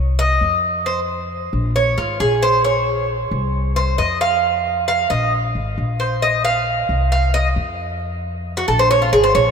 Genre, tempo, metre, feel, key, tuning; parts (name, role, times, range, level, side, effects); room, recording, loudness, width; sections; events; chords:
latin, Cuban son and guajira; 134 BPM; 4/4; straight; Bb minor; A4 = 440 Hz
upright bass; bass; 0.0-9.5 s; Ab1 to F2; -21 LUFS; left 1 dB
Cuban tres; arpeggios; 0.2-9.5 s; F4 to F5; -17 LUFS; right 1 dB
wet cathedral reverb, RT60 4.9 s; in a vast, echoing space; -16 LUFS; side -6 dB against mid
0.0-9.5 A section
Cuban tres solo 0.0-9.5
0.0 Cmadd11; 0.9 Bbsus2; 1.8 Bbm7; 3.5 Cmadd11; 4.4 Bbsus4; 5.3 Bb5; 7.1 Cmadd11; 8.0 Bbsus2; 8.9 Ab69